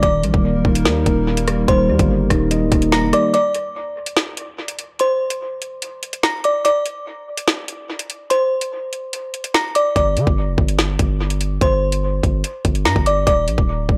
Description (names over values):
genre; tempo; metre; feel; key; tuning
hip hop, drill; 145 BPM; 4/4; half-time; unclear; A4 = 440 Hz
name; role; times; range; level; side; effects
delicate synth tine bell; melody; 0.0-14.0 s; C5 to Bb6; -22 LUFS; equal; chorus, dub echo
mellow tine electric piano; accompaniment; 0.0-3.4 s; Eb3 to Eb5; -22 LUFS; equal; phaser
hollow soft pad; sustained chords; 0.3-3.3 s; G3 to Bb4; -28 LUFS; equal; chorus
distorted 808-style bass; bass; 0.0-3.1, 10.0-14.0 s; D1 to D3; -22 LUFS; equal; distortion
drill drum kit; drums; 0.0-14.0 s; hi-hat, kick drum, rim click, snare drum; -22 LUFS; equal; dub echo
room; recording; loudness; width
light reverb, digital ambience; echo-heavy mix; -18 LUFS; mono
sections
0.0-3.3 A section; 3.3-14.0 B section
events
break 3.3-10.0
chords
0.0 Eb; 3.3 Csus2; 10.0 G5; 13.3 Eb5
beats
| 0.03 0.44 0.85 1.27 | 1.68 2.10 2.51 2.92 | 3.34 3.75 4.17 4.58 | 4.99 5.41 5.82 6.24 | 6.65 7.06 7.48 7.89 | 8.30 8.72 9.13 9.54 | 9.96 10.37 10.79 11.20 | 11.61 12.03 12.44 12.86 | 13.27 13.68